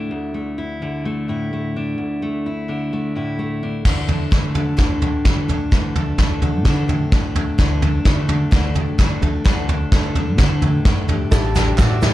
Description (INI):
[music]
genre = indie folk with a building arrangement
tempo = 128 BPM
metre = 4/4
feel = straight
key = unclear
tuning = A4 = 438 Hz
[part]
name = fingerpicked steel-string acoustic guitar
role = accompaniment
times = 0.0-12.1 s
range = D2 to E4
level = -25 LUFS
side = left 1 dB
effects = none
[part]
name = upright bass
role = bass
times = 3.8-12.1 s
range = A1 to D3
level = -22 LUFS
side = equal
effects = none
[part]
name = picked steel-string acoustic guitar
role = accompaniment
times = 3.9-12.1 s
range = A2 to A4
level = -27 LUFS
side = left 3 dB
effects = none
[part]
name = soft brush drum kit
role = drums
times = 3.9-12.1 s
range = crash cymbal, kick drum, snare drum, toms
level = -17 LUFS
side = equal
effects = none
[part]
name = clear upright piano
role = accompaniment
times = 11.3-12.1 s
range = A1 to D5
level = -31 LUFS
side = left 3 dB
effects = none
[part]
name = pedal harmonium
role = sustained chords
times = 11.3-12.1 s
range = G4 to A5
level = -32 LUFS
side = equal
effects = none
[part]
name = open-back banjo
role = arpeggios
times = 11.3-12.1 s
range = E4 to A4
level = -26 LUFS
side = right 5 dB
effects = analog delay
[part]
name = tube shaker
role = percussion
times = 11.3-12.1 s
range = none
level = -42 LUFS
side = right 5 dB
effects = none
[part]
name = group handclap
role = percussion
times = 11.8-11.9 s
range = none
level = -32 LUFS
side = right 5 dB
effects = none
[sound]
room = light reverb, small room ambience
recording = dark, warm production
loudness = -16 LUFS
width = side -15 dB against mid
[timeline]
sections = 0.0-3.9 A section; 3.9-12.1 B section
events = build-up 3.9-12.1; drum fill 3.9-12.1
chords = 0.0 Dsus2; 11.3 A7sus4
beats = | 0.10 0.57 1.04 1.51 | 1.98 2.44 2.91 3.38 | 3.85 4.32 4.79 5.25 | 5.72 6.19 6.66 7.13 | 7.59 8.06 8.53 8.99 | 9.46 9.93 10.39 10.86 | 11.33 11.79